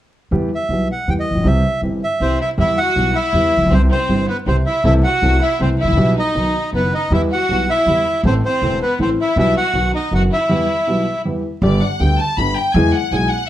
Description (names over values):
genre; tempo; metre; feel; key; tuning
tango; 159 BPM; 3/4; rubato; E harmonic minor; A4 = 438 Hz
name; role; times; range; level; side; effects
warm concert grand piano; accompaniment; 0.3-13.3 s; E1 to A4; -19 LUFS; equal; none
upright bass; bass; 0.3-13.3 s; E1 to E2; -19 LUFS; equal; none
bandoneon; melody; 0.5-11.2 s; B4 to G5; -19 LUFS; right 1 dB; plate reverb
clear studio violin section; second line; 2.2-13.5 s; B3 to B5; -22 LUFS; left 1 dB; none
room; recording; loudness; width
moderate club reverb, RT60 0.6 s; vinyl crackle; -14 LUFS; side -13 dB against mid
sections
0.3-2.6 A section; 2.6-11.6 B section; 11.6-13.5 C section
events
break 10.5-11.6; violin section solo 11.6-13.5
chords
0.3 Em; 1.5 C; 2.6 Em; 3.7 C; 4.8 Am/C; 6.0 Em/B; 6.4 B; 7.1 Em; 8.2 Am; 9.4 Em/B; 9.7 B; 10.5 Em; 11.6 G; 12.8 E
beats
| 0.32 0.70 1.08 | 1.45 1.83 2.21 | 2.59 2.97 3.35 | 3.72 4.10 4.47 | 4.85 5.23 5.60 | 5.98 6.36 6.73 | 7.11 7.49 7.87 | 8.24 8.62 9.00 | 9.37 9.75 10.12 | 10.50 10.87 11.25 | 11.63 12.00 12.38 | 12.75 13.12